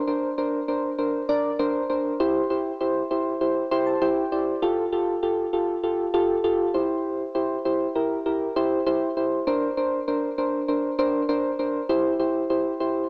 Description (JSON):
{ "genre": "pop", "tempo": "99 BPM", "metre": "4/4", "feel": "straight", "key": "unclear", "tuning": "A4 = 441 Hz", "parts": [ { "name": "soft electric-piano-like synth keys", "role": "solo", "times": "0.1-13.0 s", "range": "D4 to C6", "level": "-24 LUFS", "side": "equal", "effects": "chorus, cassette tape, analog delay" } ], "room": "moderate spring reverb, RT60 1.4 s", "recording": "home recording on cassette, small speaker sound", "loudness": "-25 LUFS", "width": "mono", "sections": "0.0-13.1 A section", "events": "synth keys fill 3.4-4.6", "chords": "0.0 Bbadd9; 2.2 C; 4.6 Fadd9; 6.7 C; 9.5 Bbadd9; 11.9 C" }